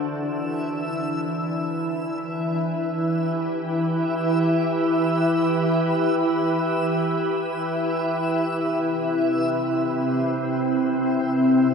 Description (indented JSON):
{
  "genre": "ambient",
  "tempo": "free time",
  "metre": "none",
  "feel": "none",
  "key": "E minor",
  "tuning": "A4 = 440 Hz",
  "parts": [
    { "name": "soft additive organ-like pad", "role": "sustained chords", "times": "0.0-11.7 s", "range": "C3 to B4", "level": "-21 LUFS", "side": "equal", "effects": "ensemble chorus, built-in reverb" },
    { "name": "backwards swelling texture", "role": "texture", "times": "0.0-11.7 s", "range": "E5 to E6", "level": "-30 LUFS", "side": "right 1 dB", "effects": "built-in reverb" }
  ],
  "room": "wet huge ambient reverb, RT60 8.1 s",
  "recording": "dark, warm production",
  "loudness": "-21 LUFS",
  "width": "side -6 dB against mid",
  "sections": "0.0-11.7 A section",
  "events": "none",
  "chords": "0.0 Em; 8.5 Cmaj7"
}